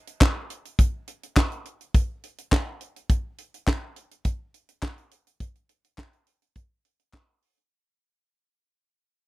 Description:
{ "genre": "funk", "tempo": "104 BPM", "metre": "4/4", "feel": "straight", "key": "none", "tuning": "none", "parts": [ { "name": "tight funk drum kit", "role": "drums", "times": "0.1-7.7 s", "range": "handclaps, hi-hat, kick drum, snare drum", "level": "-20 LUFS", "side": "equal", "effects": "none" }, { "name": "group handclap", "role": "percussion", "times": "0.2-7.3 s", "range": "none", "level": "-31 LUFS", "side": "left 6 dB", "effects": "none" } ], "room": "little or no reverb", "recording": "dry, close 1970s-style studio recording", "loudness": "-24 LUFS", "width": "side -20 dB against mid", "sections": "0.0-7.7 A section", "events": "fade-out 0.0-7.7", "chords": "none" }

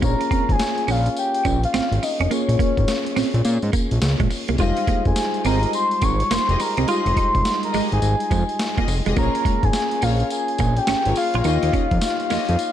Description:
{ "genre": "R&B, new jack swing", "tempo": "105 BPM", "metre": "4/4", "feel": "swing 64% on 16ths", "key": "unclear", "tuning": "A4 = 440 Hz", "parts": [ { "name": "soft octave-layered synth lead", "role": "melody", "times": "0.0-12.7 s", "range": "Db5 to Db6", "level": "-23 LUFS", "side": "left 1 dB", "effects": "chorus, tremolo" }, { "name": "soft electric-piano-like synth keys", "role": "accompaniment", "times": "0.0-12.7 s", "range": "G3 to Eb5", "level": "-27 LUFS", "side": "left 3 dB", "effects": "chorus" }, { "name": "clean electric guitar", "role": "riff", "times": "0.0-12.4 s", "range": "Ab3 to F4", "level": "-27 LUFS", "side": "right 8 dB", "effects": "wide subtle chorus" }, { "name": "fat analog bass", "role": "bass", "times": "0.0-12.6 s", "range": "F1 to Bb2", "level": "-21 LUFS", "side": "equal", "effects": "none" }, { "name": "boom bap sampler-style drum kit", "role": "drums", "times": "0.0-12.7 s", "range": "hi-hat, kick drum, snare drum, tambourine", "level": "-25 LUFS", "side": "equal", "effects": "none" }, { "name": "warm studio string section", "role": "stabs", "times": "4.6-12.5 s", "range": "F4 to Eb5", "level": "-30 LUFS", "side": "left 5 dB", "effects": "none" } ], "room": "light reverb", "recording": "dark, warm production", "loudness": "-18 LUFS", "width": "side -11 dB against mid", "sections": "0.0-12.7 A section", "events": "none", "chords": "0.0 Bbm7; 4.6 Fm9; 9.2 Bbm7; 11.4 Eb9" }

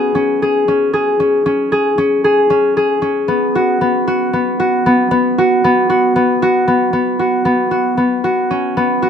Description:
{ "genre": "contemporary instrumental, contemporary", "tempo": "230 BPM (eighths)", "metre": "7/8", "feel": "straight", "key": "unclear", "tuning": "A4 = 442 Hz", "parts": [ { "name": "concert harp", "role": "solo", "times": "0.0-9.1 s", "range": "B3 to G#4", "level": "-12 LUFS", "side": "left 1 dB", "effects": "none" } ], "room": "light reverb", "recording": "close, detailed microphones", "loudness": "-12 LUFS", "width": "side -8 dB against mid", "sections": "0.0-6.9 A section; 6.9-9.1 B section", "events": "none", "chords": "0.0 C#5; 6.9 Bsus2" }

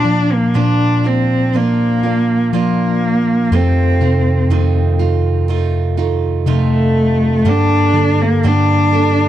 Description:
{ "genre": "pop ballad", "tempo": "61 BPM", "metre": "4/4", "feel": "straight", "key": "Bb major", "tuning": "A4 = 441 Hz", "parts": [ { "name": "warm cello", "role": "melody", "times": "0.0-9.3 s", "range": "A3 to D4", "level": "-16 LUFS", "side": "left 1 dB", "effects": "none" }, { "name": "tine electric piano", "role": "accompaniment", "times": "0.0-9.3 s", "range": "F2 to F3", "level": "-15 LUFS", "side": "left 1 dB", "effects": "fast stereo tremolo" }, { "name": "picked steel-string acoustic guitar", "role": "arpeggios", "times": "0.0-9.3 s", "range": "F2 to A4", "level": "-20 LUFS", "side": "right 11 dB", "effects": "none" } ], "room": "light reverb", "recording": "dry, close 1970s-style studio recording", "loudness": "-12 LUFS", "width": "side -12 dB against mid", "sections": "0.0-9.3 A section", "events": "none", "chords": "0.0 Bb; 3.5 F7; 7.5 Gmadd9" }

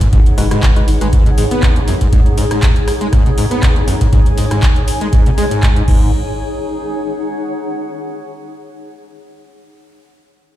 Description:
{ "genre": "acid house", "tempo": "120 BPM", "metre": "4/4", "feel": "swing 54% on 16ths", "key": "G# minor", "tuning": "A4 = 440 Hz", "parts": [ { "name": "overdriven acid bass", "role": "riff", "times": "0.0-6.1 s", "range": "G#1 to B3", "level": "-18 LUFS", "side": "equal", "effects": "ensemble chorus, ping-pong delay" }, { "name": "round analog bass", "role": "bass", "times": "0.0-1.5, 5.9-6.1 s", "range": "F#1 to G#1", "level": "-15 LUFS", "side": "equal", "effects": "sidechain pumping" }, { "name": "booming analog drum machine", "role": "drums", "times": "0.0-6.0 s", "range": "crash cymbal, handclaps, hi-hat, rim click", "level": "-24 LUFS", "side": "equal", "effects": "none" }, { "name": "electronic kick drum", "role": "drums", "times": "0.0-6.0 s", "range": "none", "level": "-12 LUFS", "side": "equal", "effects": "none" }, { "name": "granular cloud pad", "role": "texture", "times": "0.0-8.1 s", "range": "D#4 to G#5", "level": "-22 LUFS", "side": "left 1 dB", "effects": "built-in reverb, sidechain pumping" }, { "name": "percussive organ stab", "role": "stabs", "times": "0.4-1.1 s", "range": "G#3 to B4", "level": "-24 LUFS", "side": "left 4 dB", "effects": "chorus, ping-pong delay" } ], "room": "light reverb", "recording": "played on a big sound system in a bare room, large studio reverb", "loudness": "-11 LUFS", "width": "side -13 dB against mid", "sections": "0.0-6.1 A section; 6.1-8.1 B section", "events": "none", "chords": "0.0 G#m7; 5.9 G#5" }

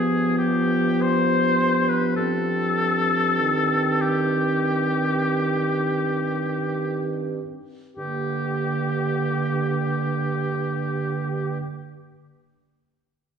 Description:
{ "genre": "classical, slow romantic movement for wind quintet", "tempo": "free time", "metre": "none", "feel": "none", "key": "G minor", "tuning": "A4 = 440 Hz", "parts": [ { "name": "clear oboe", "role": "second line", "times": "0.0-11.6 s", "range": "G4 to C5", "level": "-25 LUFS", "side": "left 3 dB", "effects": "none" }, { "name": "dark French horn", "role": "accompaniment", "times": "0.0-11.6 s", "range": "D3 to F3", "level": "-27 LUFS", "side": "equal", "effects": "none" }, { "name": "mellow clarinet", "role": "accompaniment", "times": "0.0-11.6 s", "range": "Bb3 to C4", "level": "-27 LUFS", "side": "right 1 dB", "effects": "none" }, { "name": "dark bassoon", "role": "bass", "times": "0.0-11.6 s", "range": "G2", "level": "-29 LUFS", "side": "right 6 dB", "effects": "none" } ], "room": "wet recital hall reverb, RT60 1.7 s", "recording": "heard from further back in the room", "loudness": "-21 LUFS", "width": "side -7 dB against mid", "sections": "0.0-8.0 A section; 8.0-13.4 B section", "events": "slowing down 0.0-8.0", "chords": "0.0 G7; 2.2 Cm/G; 8.0 Gm" }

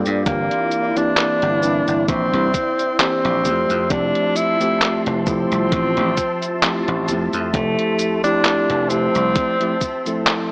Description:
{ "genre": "vaporwave", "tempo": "66 BPM", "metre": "4/4", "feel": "swing 55% on 16ths", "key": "F major", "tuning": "A4 = 440 Hz", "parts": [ { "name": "breathy tenor saxophone", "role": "melody", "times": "0.0-10.5 s", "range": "A3 to E4", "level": "-20 LUFS", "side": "equal", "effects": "vintage 12-bit sampler grit, tape echo" }, { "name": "tine electric piano", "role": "accompaniment", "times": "0.0-10.5 s", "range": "E3 to A4", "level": "-22 LUFS", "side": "equal", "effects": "lush chorus" }, { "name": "soft string machine", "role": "sustained chords", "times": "0.0-10.5 s", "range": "F3 to C6", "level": "-27 LUFS", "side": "equal", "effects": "phaser, ensemble chorus, vintage 12-bit sampler grit" }, { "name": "dry thumbed slap bass", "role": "bass", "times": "0.0-9.3 s", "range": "F1 to G2", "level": "-23 LUFS", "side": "equal", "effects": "none" }, { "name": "detuned 8-bit digital drum machine", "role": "drums", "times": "0.1-10.5 s", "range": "cabasa, handclaps, hi-hat", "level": "-21 LUFS", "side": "equal", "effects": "none" }, { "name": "electronic kick drum", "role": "drums", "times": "0.3-10.0 s", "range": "none", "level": "-23 LUFS", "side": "equal", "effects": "overdrive" } ], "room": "moderate concert hall reverb, RT60 2.3 s", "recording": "cassette tape, small speaker sound", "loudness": "-16 LUFS", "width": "side -28 dB against mid", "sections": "0.0-10.5 A section", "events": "none", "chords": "0.3 C9/G; 3.4 Fmaj7" }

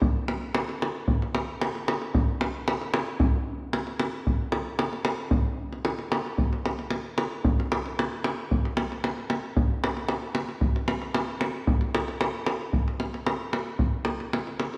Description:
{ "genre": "balkan folk", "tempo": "113 BPM", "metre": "2/4", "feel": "straight", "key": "none", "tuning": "none", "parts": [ { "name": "davul", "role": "percussion", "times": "0.0-14.8 s", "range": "none", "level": "-28 LUFS", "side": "equal", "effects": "none" } ], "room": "wet concert hall reverb, RT60 1.8 s", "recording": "none", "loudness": "-28 LUFS", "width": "mono", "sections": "0.0-6.4 A section; 6.4-14.8 B section", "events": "none", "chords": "none" }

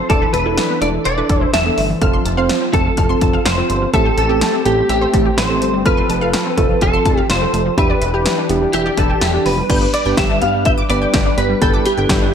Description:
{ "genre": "synth-pop", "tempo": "125 BPM", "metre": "4/4", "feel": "straight", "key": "unclear", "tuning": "A4 = 440 Hz", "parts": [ { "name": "electric guitar at the edge of break-up", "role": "melody", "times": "0.0-12.3 s", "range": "G4 to F5", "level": "-18 LUFS", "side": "equal", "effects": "ensemble chorus" }, { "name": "warm analog pad", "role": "sustained chords", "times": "0.0-12.3 s", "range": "E3 to B4", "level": "-25 LUFS", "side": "equal", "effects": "chorus" }, { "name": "wide unison pluck", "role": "arpeggios", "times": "0.0-12.3 s", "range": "E3 to G6", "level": "-24 LUFS", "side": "left 1 dB", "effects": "ensemble chorus, ping-pong delay" }, { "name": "fat analog bass", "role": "bass", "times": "0.0-12.3 s", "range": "E1 to G2", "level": "-21 LUFS", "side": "equal", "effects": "none" }, { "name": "muted felt-like synth keys", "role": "accompaniment", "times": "0.1-12.2 s", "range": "B3 to C5", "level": "-22 LUFS", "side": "right 4 dB", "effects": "chorus" }, { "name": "punchy analog drum machine", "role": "drums", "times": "0.1-12.2 s", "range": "crash cymbal, hi-hat, kick drum, snare drum", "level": "-18 LUFS", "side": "equal", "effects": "none" } ], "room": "moderate lush hall reverb, RT60 1.8 s, digital ambience", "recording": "bright 1980s-style digital production", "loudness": "-13 LUFS", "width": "side -8 dB against mid", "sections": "0.0-9.7 A section; 9.7-12.3 B section", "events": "none", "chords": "0.1 E7sus4; 2.0 F; 3.9 Am7; 5.9 F; 7.8 Em7; 9.7 G" }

